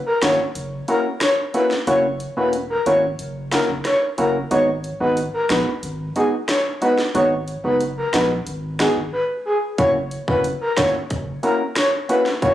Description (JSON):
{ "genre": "dancehall", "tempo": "91 BPM", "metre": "4/4", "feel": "straight", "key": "unclear", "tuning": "A4 = 440 Hz", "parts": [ { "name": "breathy flute-like synth lead", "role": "melody", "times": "0.1-12.5 s", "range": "G#4 to C#5", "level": "-20 LUFS", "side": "equal", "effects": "chorus, analog delay" }, { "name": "percussive organ stab", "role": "accompaniment", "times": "0.2-12.5 s", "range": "G#3 to F#4", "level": "-23 LUFS", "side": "equal", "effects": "chorus" }, { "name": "round analog bass", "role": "bass", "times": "0.2-12.5 s", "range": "E1 to A#1", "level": "-30 LUFS", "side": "equal", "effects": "none" }, { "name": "island pop drum kit", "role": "drums", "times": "0.2-12.5 s", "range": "hi-hat, kick drum, rim click, snare drum", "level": "-24 LUFS", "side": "equal", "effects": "none" } ], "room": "light reverb", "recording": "recorded on a phone in the room, studio reverb", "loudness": "-18 LUFS", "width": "side -12 dB against mid", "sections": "0.0-12.5 A section", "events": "break 0.0-9.8; drums muted 9.1-9.8", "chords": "0.0 F#7; 4.5 G#m7; 9.8 F#7", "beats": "0.56 1.21 | 1.87 2.53 3.19 3.85 | 4.51 5.17 5.83 6.49 | 7.15 7.81 8.47 9.13 | 9.79 10.45 11.10 11.76 | 12.42" }